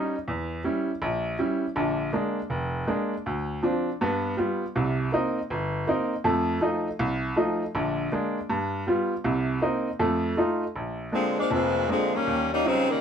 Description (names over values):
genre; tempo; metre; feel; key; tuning
jazz; 160 BPM; 4/4; swing 63% on 8ths; Bb major; A4 = 437 Hz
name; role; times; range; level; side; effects
bright upright piano; accompaniment; 0.0-12.9 s; F1 to F4; -25 LUFS; right 1 dB; none
bright saxophone section; melody; 11.1-13.0 s; Db3 to Eb4; -23 LUFS; left 2 dB; none
room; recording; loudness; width
moderate small room reverb, RT60 0.6 s; band playing live in one room; -24 LUFS; side -8 dB against mid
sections
0.0-10.7 A section; 10.7-13.0 B section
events
none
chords
0.3 Edim7; 1.8 Bb7; 3.3 Dm7; 4.0 G7; 4.7 Cm7; 6.2 F7; 7.7 Bb7; 8.5 G7; 9.2 Cm7; 10.0 F7; 10.7 Bb7; 12.3 Eb7